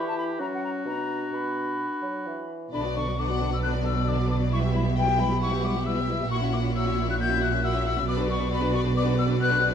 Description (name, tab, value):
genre	quick classical-period movement for symphony orchestra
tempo	134 BPM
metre	4/4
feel	rubato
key	B minor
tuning	A4 = 444 Hz
part	clear oboe	second line	0.0-2.5 s	F#4 to G4	-35 LUFS	equal	none
part	silver concert flute	second line	0.0-9.6 s	F#5 to G6	-29 LUFS	left 4 dB	none
part	warm clarinet	second line	0.0-2.5 s	C#4 to E4	-34 LUFS	left 3 dB	none
part	mellow bassoon	accompaniment	0.0-2.7 s	B2 to F#3	-34 LUFS	right 2 dB	none
part	rich chamber violin section	melody	2.7-9.7 s	C#5 to G5	-35 LUFS	left 9 dB	none
part	rich chamber violin section	second line	2.7-9.7 s	D4 to F#5	-33 LUFS	left 5 dB	none
part	rich studio viola section	accompaniment	2.7-9.7 s	D3 to B4	-31 LUFS	left 1 dB	none
part	dark chamber double bass section	bass	2.7-9.7 s	A#1 to B1	-28 LUFS	right 2 dB	none
part	rich chamber cello section	bass	2.7-9.7 s	A#2 to B2	-29 LUFS	right 3 dB	none
room	moderate recital hall reverb, RT60 1.4 s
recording	dark, warm production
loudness	-23 LUFS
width	side -8 dB against mid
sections	0.0-2.7 A section; 2.7-9.7 B section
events	none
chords	0.4 F#5; 0.9 Bm; 4.5 Em/B; 6.3 F#7/A#; 8.1 Bm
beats	0.41 | 0.87 1.34 1.80 2.27 | 2.73 3.18 3.63 4.07 | 4.51 4.96 5.41 5.86 | 6.31 6.75 7.20 7.64 | 8.07 8.52 8.96 9.39